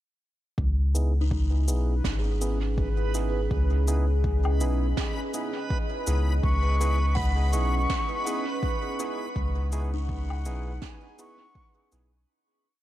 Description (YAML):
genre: ambient dub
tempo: 82 BPM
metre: 4/4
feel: swing 59% on 16ths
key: C# minor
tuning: A4 = 440 Hz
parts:
  - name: deep dark ambient pad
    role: sustained chords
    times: 2.0-12.3 s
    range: C#4 to F#5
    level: -35 LUFS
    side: right 1 dB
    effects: chorus, built-in reverb
  - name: soft dub sub bass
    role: bass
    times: 0.6-12.3 s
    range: G#1 to C#2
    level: -24 LUFS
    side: equal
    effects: none
  - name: electronic kick drum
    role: drums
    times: 0.6-11.7 s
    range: none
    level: -30 LUFS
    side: equal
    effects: overdrive
  - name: backwards swelling texture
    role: texture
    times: 2.0-12.3 s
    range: B4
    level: -38 LUFS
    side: right 3 dB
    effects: built-in reverb
  - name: barky tine electric piano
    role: stabs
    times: 0.9-12.1 s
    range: B3 to G#4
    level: -36 LUFS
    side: right 3 dB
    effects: overdrive, low-pass filter, dub echo
  - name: cabasa, snare drum and woodblock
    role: drums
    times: 1.0-12.1 s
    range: none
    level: -38 LUFS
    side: right 3 dB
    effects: dub echo
  - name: buzzing kalimba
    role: arpeggios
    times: 1.2-12.2 s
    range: D#4 to F#5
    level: -38 LUFS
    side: left 1 dB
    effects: tape echo
  - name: silver concert flute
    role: melody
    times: 6.4-11.9 s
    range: F#5 to C#6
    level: -33 LUFS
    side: left 1 dB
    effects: tape echo
room: studio ambience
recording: none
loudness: -24 LUFS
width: side -14 dB against mid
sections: 0.6-12.3 groove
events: filter sweep on tine electric piano 0.6-12.3; fade-out 8.4-12.3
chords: 0.6 C#m9